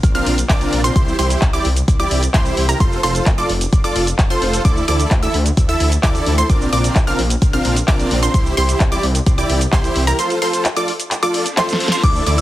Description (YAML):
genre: EDM, festival progressive house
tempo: 130 BPM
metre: 4/4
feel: straight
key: F major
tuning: A4 = 441 Hz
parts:
  - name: wide detuned saw bass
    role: bass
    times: 0.0-12.4 s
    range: F1 to D2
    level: -19 LUFS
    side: equal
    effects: chorus, sidechain pumping
  - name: electronic kick drum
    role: drums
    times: 0.0-12.1 s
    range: none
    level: -15 LUFS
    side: equal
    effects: none
  - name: house drum kit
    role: drums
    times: 0.0-12.4 s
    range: crash cymbal, handclaps, hi-hat, shaker, snare drum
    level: -22 LUFS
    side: equal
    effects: none
  - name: wide unison pluck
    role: arpeggios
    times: 0.1-12.4 s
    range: Bb5 to F6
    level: -23 LUFS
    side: right 1 dB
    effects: sidechain pumping, tape echo
  - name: dense compressed supersaw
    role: riff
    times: 0.1-12.4 s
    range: C4 to F5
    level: -20 LUFS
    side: right 1 dB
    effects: sidechain pumping, tape echo
  - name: reverse cymbal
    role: sound effects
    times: 11.4-12.0 s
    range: none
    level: -27 LUFS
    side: right 2 dB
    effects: none
  - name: glassy synth bell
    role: melody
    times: 12.0-12.4 s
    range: D6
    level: -21 LUFS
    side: left 2 dB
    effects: chorus, phaser
room: light reverb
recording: heavily compressed radio sound, multiband compression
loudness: -14 LUFS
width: side -14 dB against mid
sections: 0.0-12.4 A section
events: reverse cymbal 11.4-12.0; drum fill 11.6-12.0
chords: 0.0 Bbadd9; 1.0 C; 2.8 F; 4.6 Dsus2; 6.5 Bbadd9; 8.3 C; 10.2 F